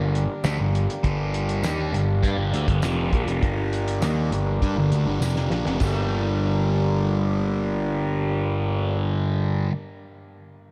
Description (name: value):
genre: psychedelic rock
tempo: 100 BPM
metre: 4/4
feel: straight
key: G minor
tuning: A4 = 439 Hz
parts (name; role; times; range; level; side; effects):
- pedal harmonium; sustained chords; 0.0-9.0 s; Bb3 to Bb4; -33 LUFS; equal; none
- fuzz guitar; riff; 0.0-9.7 s; F2 to Eb4; -27 LUFS; equal; distortion, phaser
- fuzz picked electric bass; bass; 0.0-9.7 s; F1 to G2; -29 LUFS; equal; overdrive
- cloth-damped thuddy drum kit; drums; 0.2-6.0 s; crash cymbal, hi-hat, kick drum, snare drum; -31 LUFS; equal; none
- tambourine; percussion; 0.4-6.1 s; none; -46 LUFS; equal; none
room: moderate cathedral reverb, RT60 5.6 s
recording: dreamy mix soaked in reverb, cassette tape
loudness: -24 LUFS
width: mono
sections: 0.0-5.8 A section; 5.8-8.2 B section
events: drum fill 5.2-5.8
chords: 0.0 Gm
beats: 0.44 | 1.03 1.63 2.23 2.83 | 3.42 4.02 4.62 5.22 | 5.81 6.41 7.01 7.61